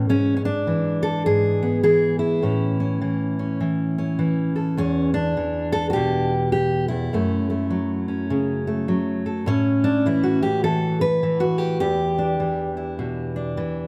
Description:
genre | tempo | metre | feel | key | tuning
folk, solo fingerstyle acoustic guitar | 102 BPM | 4/4 | swing 62% on 8ths | E dorian | A4 = 439 Hz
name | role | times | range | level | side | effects
fingerpicked steel-string acoustic guitar | solo | 0.0-13.9 s | E2 to B4 | -22 LUFS | equal | none
room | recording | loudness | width
moderate scoring stage reverb, RT60 1.6 s | none | -22 LUFS | mono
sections
0.0-13.9 A section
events
none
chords
0.1 E/G#; 2.4 A; 4.8 Em7; 7.1 F#m; 9.5 A; 11.8 Em7

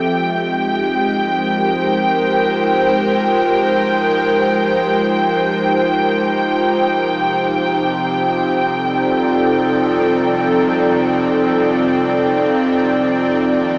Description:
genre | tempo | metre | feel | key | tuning
ambient | free time | none | none | unclear | A4 = 439 Hz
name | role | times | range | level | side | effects
airy breathy pad | sustained chords | 0.0-13.8 s | C3 to E5 | -15 LUFS | equal | chorus
warm symphonic cello section | bass | 0.0-13.8 s | C2 to Ab2 | -35 LUFS | equal | none
analog drone | drone | 0.1-13.8 s | F3 | -23 LUFS | equal | chorus
muted studio violin section | texture | 0.0-13.8 s | G5 | -19 LUFS | equal | none
room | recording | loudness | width
wet cathedral reverb, RT60 5.3 s | dreamy mix soaked in reverb, small speaker sound | -13 LUFS | side -28 dB against mid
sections
0.0-13.8 A section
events
none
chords
0.1 Abmaj7; 6.9 Cm6

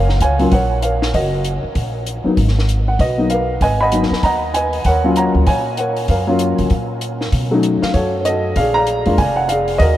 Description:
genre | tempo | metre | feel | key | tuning
jazz piano trio | 194 BPM | 4/4 | swing 62% on 8ths | Eb minor | A4 = 440 Hz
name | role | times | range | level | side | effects
dark baby grand piano | melody | 0.0-10.0 s | Gb3 to Cb6 | -16 LUFS | equal | none
upright bass | bass | 0.0-10.0 s | F1 to B2 | -18 LUFS | equal | none
compact cocktail drum kit | drums | 0.1-9.9 s | hi-hat, kick drum, snare drum | -25 LUFS | equal | none
room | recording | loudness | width
moderate huge ambient reverb, RT60 8.6 s | in a vast, echoing space | -14 LUFS | side -13 dB against mid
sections
0.0-10.0 A section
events
none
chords
0.0 Ebm9 (rootless); 2.4 Abm9; 4.8 Ebm9; 7.3 B7; 8.6 Bb7

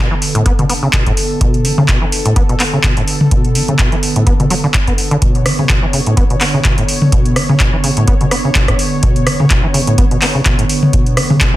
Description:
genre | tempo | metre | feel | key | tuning
acid house | 126 BPM | 4/4 | swing 55% on 16ths | B minor | A4 = 440 Hz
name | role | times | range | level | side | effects
warm analog pad | sustained chords | 0.0-11.6 s | D3 to C#5 | -20 LUFS | right 2 dB | chorus, sidechain pumping
acid bass, saw | riff | 0.0-11.6 s | A2 to B3 | -17 LUFS | equal | cassette tape, ping-pong delay
booming analog drum machine | drums | 0.2-11.5 s | handclaps, hi-hat, rim click, toms | -15 LUFS | equal | none
electronic kick drum | drums | 0.5-11.5 s | none | -14 LUFS | equal | none
room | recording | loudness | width
little or no reverb | dense, heavily limited modern master | -10 LUFS | side -15 dB against mid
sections
0.0-11.6 A section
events
filter sweep on acid bass 0.0-11.6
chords
0.0 Bm7

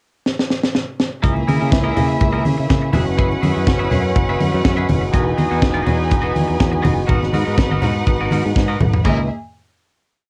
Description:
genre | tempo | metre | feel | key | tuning
disco | 123 BPM | 4/4 | straight | C# dorian | A4 = 436 Hz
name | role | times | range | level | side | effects
tight funk drum kit | drums | 0.3-9.2 s | crash cymbal, hi-hat, kick drum, snare drum, toms | -21 LUFS | equal | cassette tape
rich studio string section | second line | 1.2-9.3 s | A#3 to G#5 | -25 LUFS | equal | cassette tape
twangy electric guitar | accompaniment | 1.2-9.2 s | A#3 to E5 | -29 LUFS | equal | cassette tape
warm French horn section | sustained chords | 1.2-9.3 s | A#2 to F#4 | -27 LUFS | equal | cassette tape
fingered electric bass | bass | 1.2-9.3 s | E1 to C#3 | -23 LUFS | equal | none
congas | percussion | 1.4-9.3 s | none | -24 LUFS | equal | none
room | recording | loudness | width
little or no reverb | home recording on cassette | -17 LUFS | mono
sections
0.0-1.2 pickup bar; 1.2-9.1 verse; 9.1-10.3 final chord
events
drum fill 0.3-1.2, 8.6-9.1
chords
0.0 N.C.; 1.2 C#m69; 2.9 F#9sus4; 5.1 Emaj9; 7.1 G#m9; 9.1 C#m69

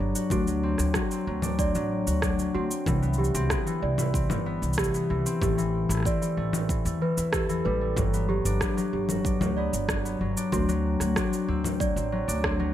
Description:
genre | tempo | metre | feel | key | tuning
folktronica | 94 BPM | 4/4 | straight | unclear | A4 = 442 Hz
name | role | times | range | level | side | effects
celesta | second line | 0.0-12.7 s | F#4 to D5 | -32 LUFS | right 3 dB | tape echo
concert harp | arpeggios | 0.0-12.7 s | E3 to A4 | -28 LUFS | left 2 dB | tape echo
upright bass | bass | 0.0-12.7 s | G1 to E2 | -29 LUFS | equal | tube saturation
electronic shaker, congas and rim click | drums | 0.2-12.6 s | none | -32 LUFS | equal | none
electronic kick drum | drums | 0.3-12.6 s | none | -30 LUFS | equal | none
room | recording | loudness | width
studio ambience | none | -24 LUFS | side -12 dB against mid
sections
0.0-12.7 A section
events
none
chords
0.3 D7; 2.9 Cmaj7; 5.4 Am7; 8.0 Gmaj7; 10.5 D7

